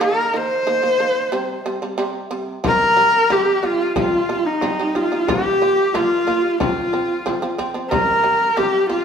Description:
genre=mongolian traditional, Mongolian folk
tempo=91 BPM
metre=4/4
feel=straight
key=C yu mode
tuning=A4 = 438 Hz
part: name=bright horsehead fiddle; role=melody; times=0.0-9.0 s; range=Eb4 to C5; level=-17 LUFS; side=equal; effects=none
part: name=shamisen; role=arpeggios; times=0.0-9.0 s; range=C3 to F4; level=-24 LUFS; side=right 2 dB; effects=none
part: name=bright low xiao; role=second line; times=2.6-9.0 s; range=Eb4 to C5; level=-25 LUFS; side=left 2 dB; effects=none
part: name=frame drum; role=percussion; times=2.6-9.0 s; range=none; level=-26 LUFS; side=left 4 dB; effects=none
room=wet stone room reverb, RT60 1.3 s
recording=band playing live in one room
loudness=-16 LUFS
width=side -7 dB against mid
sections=0.0-2.6 A section; 2.6-9.0 B section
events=none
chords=0.0 Eb5; 1.3 C5; 5.3 Bb5; 6.6 F5; 7.9 C5

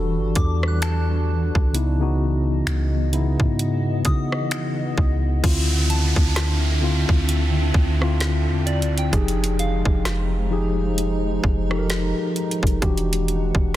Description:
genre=contemporary R&B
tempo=65 BPM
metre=4/4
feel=swing 58% on 16ths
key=unclear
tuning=A4 = 440 Hz
part: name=mellow tine electric piano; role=accompaniment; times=0.0-13.8 s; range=C#3 to Bb4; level=-24 LUFS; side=left 2 dB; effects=medium stereo tremolo
part: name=granular cloud pad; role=sustained chords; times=0.0-13.8 s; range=C#3 to F#5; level=-31 LUFS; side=right 1 dB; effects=built-in reverb, sidechain pumping
part: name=soft 808-style bass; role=bass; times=0.0-13.8 s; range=E1 to C#3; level=-22 LUFS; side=equal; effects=none
part: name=soft synth bell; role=texture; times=0.0-12.9 s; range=D5 to F#6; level=-34 LUFS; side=right 1 dB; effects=chorus, phaser, tape echo
part: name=trap drum kit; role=drums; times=0.4-13.7 s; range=crash cymbal, finger snaps, hi-hat, kick drum, rim click, snare drum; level=-23 LUFS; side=equal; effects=soft clipping on snare
part: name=downlifter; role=sound effects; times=5.4-12.8 s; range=none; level=-30 LUFS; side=right 2 dB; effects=none
room=digital ambience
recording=dense, heavily limited modern master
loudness=-19 LUFS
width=side -14 dB against mid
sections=0.0-5.4 A section; 5.4-13.8 B section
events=none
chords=0.0 Em9; 1.7 C#m9; 5.4 Dm9; 9.1 Fm9; 12.8 Em9

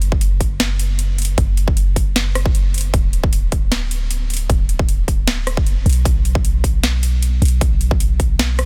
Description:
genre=future bass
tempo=154 BPM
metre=4/4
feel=swing 53% on 16ths, half-time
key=unclear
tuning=A4 = 440 Hz
part: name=warm 808-style bass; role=bass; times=0.0-8.7 s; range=D1 to B1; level=-21 LUFS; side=equal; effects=sidechain pumping
part: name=trap drum kit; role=drums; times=0.0-8.7 s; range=hi-hat, rim click, snare drum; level=-25 LUFS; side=equal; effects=overdrive, studio reverb
part: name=electronic kick drum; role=drums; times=0.1-8.3 s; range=none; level=-19 LUFS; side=equal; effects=studio reverb
room=little or no reverb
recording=dense, heavily limited modern master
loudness=-17 LUFS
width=mono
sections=0.0-8.7 A section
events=none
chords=none

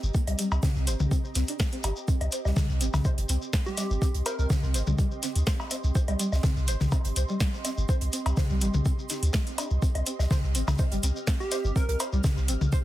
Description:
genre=minimal techno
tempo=124 BPM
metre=4/4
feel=swing 53% on 16ths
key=C minor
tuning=A4 = 440 Hz
part: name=punchy sub bass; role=bass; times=0.0-12.7 s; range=G1 to D2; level=-26 LUFS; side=equal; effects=sidechain pumping
part: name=shekere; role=percussion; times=0.0-12.8 s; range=none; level=-40 LUFS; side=left 2 dB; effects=none
part: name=ethereal airy pad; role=texture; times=0.0-12.8 s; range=C4 to F6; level=-39 LUFS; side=right 3 dB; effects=ensemble chorus, built-in reverb, sidechain pumping
part: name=string-like resonator pluck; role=riff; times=0.1-12.8 s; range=G3 to C5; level=-35 LUFS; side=equal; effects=wide subtle chorus, sidechain pumping, tape echo
part: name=electronic kick drum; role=drums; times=0.1-12.8 s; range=none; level=-26 LUFS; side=equal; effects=none
part: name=gated 80s drum kit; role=drums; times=0.2-12.8 s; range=hi-hat, shaker, snare drum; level=-42 LUFS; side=right 3 dB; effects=sidechain pumping on hats, high-pass filter on hats, high-pass filter on snare, sidechain pumping on perc, high-pass filter on perc, high-pass filter on room
part: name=booming analog drum machine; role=drums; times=0.3-12.6 s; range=hi-hat, snare drum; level=-32 LUFS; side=equal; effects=overdrive
part: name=electronic woodblock, cowbell and toms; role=percussion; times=0.3-12.7 s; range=none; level=-32 LUFS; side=left 3 dB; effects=none
part: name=plucky unison lead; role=melody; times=3.7-4.5, 11.4-12.0 s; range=G4 to Bb4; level=-34 LUFS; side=right 1 dB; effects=tape echo
room=light reverb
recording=dense, heavily limited modern master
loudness=-24 LUFS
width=side -15 dB against mid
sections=0.0-12.8 A section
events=fade-in on ambient pad 0.0-12.8; filter sweep on synth pluck 0.0-12.8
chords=0.0 Cm

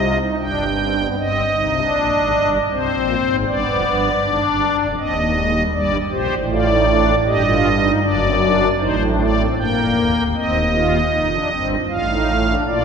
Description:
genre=classical, baroque-style 3-part fugue for pipe organ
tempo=78 BPM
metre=3/4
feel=straight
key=C minor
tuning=A4 = 440 Hz
part: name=pipe organ, strings celeste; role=solo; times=0.0-12.8 s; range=D1 to G5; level=-16 LUFS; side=equal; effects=none
room=wet church reverb, RT60 3.1 s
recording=minimal, uncompressed stereo recording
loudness=-16 LUFS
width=side -6 dB against mid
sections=0.0-1.2 A section; 1.2-10.3 B section; 10.3-12.8 A section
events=none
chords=0.4 G; 1.2 Cm/G; 2.7 Abadd9; 3.5 G7; 5.0 Cm/Eb; 5.7 Gm; 7.3 Ebadd9/G; 8.0 D7/F#; 9.6 Gm; 10.3 Cm/Eb; 11.9 F/A

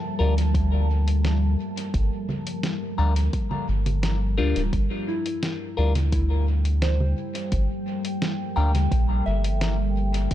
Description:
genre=ambient dub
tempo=86 BPM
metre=4/4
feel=straight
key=G dorian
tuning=A4 = 440 Hz
part: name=deep dark ambient pad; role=sustained chords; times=0.0-10.3 s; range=F3 to A5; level=-30 LUFS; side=left 1 dB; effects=chorus, built-in reverb
part: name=soft synth bell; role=arpeggios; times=0.0-10.3 s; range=E4 to G5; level=-34 LUFS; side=equal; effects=chorus, dub echo
part: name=clean electric guitar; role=stabs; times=0.2-8.7 s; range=G3 to Bb4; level=-31 LUFS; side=left 5 dB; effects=phaser, dub echo
part: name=soft dub sub bass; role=bass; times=0.2-10.3 s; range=D1 to D2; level=-22 LUFS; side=equal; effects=none
part: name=lo-fi sampler-style drum kit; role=drums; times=0.4-10.3 s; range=congas, hi-hat, snare drum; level=-32 LUFS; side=right 1 dB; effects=dub echo
part: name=electronic kick drum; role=drums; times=0.5-10.3 s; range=none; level=-26 LUFS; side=equal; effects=none
room=little or no reverb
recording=dark, warm production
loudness=-21 LUFS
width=side -12 dB against mid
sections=0.0-4.7 A section; 4.7-10.3 A section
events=none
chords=0.0 Gm7

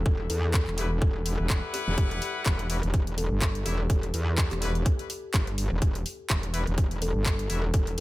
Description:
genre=bass house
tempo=125 BPM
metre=4/4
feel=swing 56% on 16ths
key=E minor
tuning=A4 = 440 Hz
part: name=metallic wobble bass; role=bass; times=0.0-8.0 s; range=E1 to E2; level=-28 LUFS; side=equal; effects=distortion, chorus, tube saturation, sidechain pumping
part: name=electronic kick drum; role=drums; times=0.1-7.8 s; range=none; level=-26 LUFS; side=equal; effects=none
part: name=kalimba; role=melody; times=0.3-8.0 s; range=G4 to A4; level=-37 LUFS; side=left 1 dB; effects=ping-pong delay
part: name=house drum kit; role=drums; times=0.3-8.0 s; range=handclaps, hi-hat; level=-33 LUFS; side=left 1 dB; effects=none
part: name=bright horn section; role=stabs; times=0.8-7.6 s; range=G3 to F#5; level=-36 LUFS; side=left 4 dB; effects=sidechain pumping, ping-pong delay
room=little or no reverb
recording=none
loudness=-25 LUFS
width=side -18 dB against mid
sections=0.0-8.0 A section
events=none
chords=0.0 Emadd9

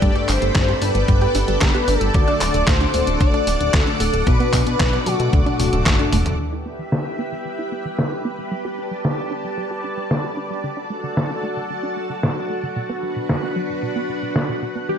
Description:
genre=italo disco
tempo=113 BPM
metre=4/4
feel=straight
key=E minor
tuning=A4 = 440 Hz
part: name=wide unison lead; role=melody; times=0.0-5.9, 14.9-15.0 s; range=F#4 to D5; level=-22 LUFS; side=left 1 dB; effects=analog chorus, tape echo
part: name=string machine, full ensemble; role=sustained chords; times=0.0-15.0 s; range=B3 to D6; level=-26 LUFS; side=equal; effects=ensemble chorus
part: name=wide unison pluck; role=arpeggios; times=0.0-15.0 s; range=F#2 to G4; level=-29 LUFS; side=right 2 dB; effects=digital delay
part: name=mellow synth brass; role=stabs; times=0.0-6.4 s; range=G2 to B4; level=-25 LUFS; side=left 3 dB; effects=chorus
part: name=chorused synth bass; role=bass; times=0.0-6.4 s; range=D1 to B2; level=-22 LUFS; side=equal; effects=tube saturation
part: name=detuned 8-bit digital drum machine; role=drums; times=0.0-14.5 s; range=crash cymbal, handclaps, hi-hat, snare drum, toms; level=-22 LUFS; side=equal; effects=low-pass filter on hats, low-pass filter on snare, low-pass filter on toms, low-pass filter on cymbals, low-pass filter on room, gated reverb
part: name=electronic kick drum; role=drums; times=0.0-6.0 s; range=none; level=-19 LUFS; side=equal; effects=none
room=light reverb, digital ambience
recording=none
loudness=-18 LUFS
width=side -8 dB against mid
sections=0.0-6.4 A section; 6.4-15.0 B section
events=drum fill 5.3-6.4; filter sweep on synth arpeggio sound 6.4-15.0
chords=0.0 Gadd9; 2.1 D; 4.3 Bm; 5.3 D; 6.4 Em; 8.5 Gadd9; 10.6 D; 12.8 Bm

